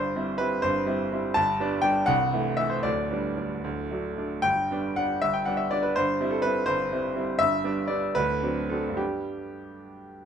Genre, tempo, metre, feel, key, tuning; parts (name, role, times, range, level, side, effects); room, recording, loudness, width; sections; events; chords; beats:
classical, romantic character piece for solo piano; 70-84 BPM (dotted quarters); 6/8; rubato; G major; A4 = 437 Hz
clear grand piano; solo; 0.0-10.3 s; C1 to A5; -24 LUFS; equal
light reverb; minimal, uncompressed stereo recording; -24 LUFS; side -8 dB against mid
0.0-10.3 A section
0.0 C/G; 1.4 G; 2.1 Am/C; 2.9 G/D; 3.6 D; 4.4 G; 6.0 C/G; 7.4 G; 8.2 D7; 9.0 G
0.64 | 1.35 2.08 | 2.85 3.65 | 4.45 5.22 | 5.95 6.68 | 7.40 8.16 | 8.99 9.84